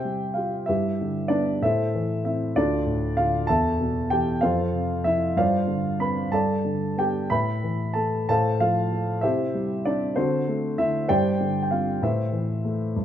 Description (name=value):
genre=classical, lyrical solo piano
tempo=64 BPM (dotted quarters)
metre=6/8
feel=rubato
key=unclear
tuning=A4 = 440 Hz
part: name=dark grand piano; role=solo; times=0.0-13.0 s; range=D2 to B5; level=-22 LUFS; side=equal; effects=none
room=moderate recital hall reverb, RT60 1.4 s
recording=minimal, uncompressed stereo recording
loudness=-22 LUFS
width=side -10 dB against mid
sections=0.0-13.0 A section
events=none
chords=0.0 C; 0.7 G; 1.6 Am; 2.5 Dm; 3.5 Em; 4.4 F; 5.4 Gsus4; 6.3 G; 7.3 Asus2; 8.3 F/A; 9.2 C; 10.2 D7; 11.1 Gsus4; 12.0 Amadd9